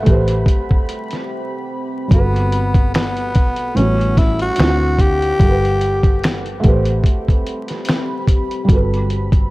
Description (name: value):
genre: lo-fi hip hop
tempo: 73 BPM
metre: 4/4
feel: swing 57% on 16ths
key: G major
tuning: A4 = 438 Hz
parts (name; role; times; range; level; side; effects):
- growling tenor saxophone; melody; 0.0-6.6 s; A3 to G4; -21 LUFS; left 1 dB; dub echo
- felt-muted upright piano; accompaniment; 0.0-9.5 s; A2 to F#5; -22 LUFS; right 2 dB; cassette tape
- deep dark ambient pad; sustained chords; 0.0-9.5 s; C4 to B5; -28 LUFS; left 1 dB; chorus, built-in reverb
- vintage muted fingered electric bass; bass; 0.1-9.5 s; G1 to D2; -19 LUFS; equal; none
- lo-fi sampler-style drum kit; drums; 0.1-9.5 s; finger snaps, hi-hat, kick drum, snare drum; -15 LUFS; equal; none
room: little or no reverb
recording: echo-heavy mix, vinyl crackle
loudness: -14 LUFS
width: side -20 dB against mid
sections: 0.0-9.5 A section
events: break 1.3-2.1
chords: 0.1 Am9; 2.1 Gmaj9; 3.8 A13; 4.6 D9; 5.4 Gmaj9; 6.6 Am9; 8.7 Gmaj9